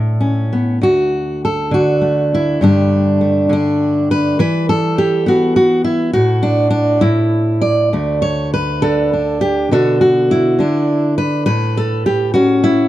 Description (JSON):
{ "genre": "folk, solo fingerstyle acoustic guitar", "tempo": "68 BPM (dotted quarters)", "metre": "6/8", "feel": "rubato", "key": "D major", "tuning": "A4 = 441 Hz", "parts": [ { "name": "fingerpicked steel-string acoustic guitar", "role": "solo", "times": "0.0-12.9 s", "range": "D2 to D5", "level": "-12 LUFS", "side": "equal", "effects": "none" } ], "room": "small room ambience", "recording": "dry, close 1970s-style studio recording", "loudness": "-12 LUFS", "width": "side -14 dB against mid", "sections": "0.8-12.9 A section", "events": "none", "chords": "0.0 Aadd9; 0.8 D; 2.6 Gsus2; 4.4 Em; 6.1 N.C.; 7.9 D5; 9.7 Bm; 11.5 Aadd9", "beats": "| 0.80 1.70 | 2.60 3.49 | 4.37 5.25 | 6.14 7.02 | 7.92 8.82 | 9.71 10.59 | 11.46 12.34" }